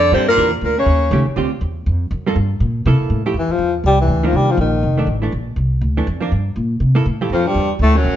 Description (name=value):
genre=jazz, small-group swing and bop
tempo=243 BPM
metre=4/4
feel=swing 57% on 8ths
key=F major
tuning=A4 = 439 Hz
part: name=breathy alto saxophone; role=melody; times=0.0-1.2, 3.4-5.2, 7.3-8.2 s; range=Eb3 to D5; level=-16 LUFS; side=left 2 dB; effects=plate reverb
part: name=warm baritone saxophone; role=second line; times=0.0-1.2, 7.3-8.2 s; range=F2 to D3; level=-20 LUFS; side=right 3 dB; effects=none
part: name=upright bass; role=bass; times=0.0-8.2 s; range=F1 to C3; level=-17 LUFS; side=equal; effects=none
part: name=hollow-body jazz guitar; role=accompaniment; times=0.1-7.3 s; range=D3 to Bb4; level=-22 LUFS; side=right 4 dB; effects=none
room=wet studio reverb, RT60 0.9 s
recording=heard from further back in the room, nothing above 7.8 kHz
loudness=-14 LUFS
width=side -11 dB against mid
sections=0.0-3.3 A section; 3.3-8.2 B section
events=none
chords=0.4 Em7b5; 0.9 Eb7#11; 1.4 Dm11; 2.4 Gm; 2.9 C6; 3.3 F5; 4.3 Cm9; 4.8 F6; 5.3 Bbadd9; 6.3 Gm; 6.8 C6; 7.3 Fsus2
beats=0.13 | 0.38 0.62 0.87 1.12 | 1.37 1.61 1.86 2.11 | 2.36 2.60 2.85 3.10 | 3.35 3.59 3.84 4.09 | 4.33 4.58 4.83 5.08 | 5.32 5.57 5.82 6.07 | 6.31 6.56 6.81 7.06 | 7.30 7.55 7.80 8.04